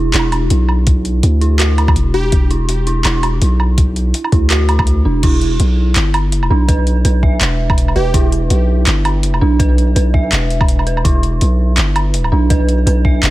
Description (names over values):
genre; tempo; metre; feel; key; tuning
half-time drum and bass; 165 BPM; 4/4; swing 57% on 16ths, half-time; E minor; A4 = 440 Hz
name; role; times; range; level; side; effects
dark detuned synth bell; arpeggios; 0.0-13.3 s; D4 to E5; -20 LUFS; right 2 dB; chorus, phaser, digital delay
long sustained 808-style bass; bass; 0.0-13.3 s; E1 to D2; -14 LUFS; equal; none
drum and bass drum kit; drums; 0.1-13.3 s; crash cymbal, handclaps, hi-hat, woodblock; -19 LUFS; right 1 dB; none
electronic kick drum; drums; 0.9-13.1 s; none; -14 LUFS; equal; none
plucky unison lead; melody; 2.1-2.5, 8.0-8.3 s; G4; -23 LUFS; left 3 dB; phaser, tape echo
room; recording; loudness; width
digital ambience; none; -11 LUFS; side -16 dB against mid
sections
0.0-5.2 A section; 5.2-13.3 A section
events
drop 0.0-5.2, 5.2-13.3; kick drops out 4.9-5.2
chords
0.0 E5; 5.2 Em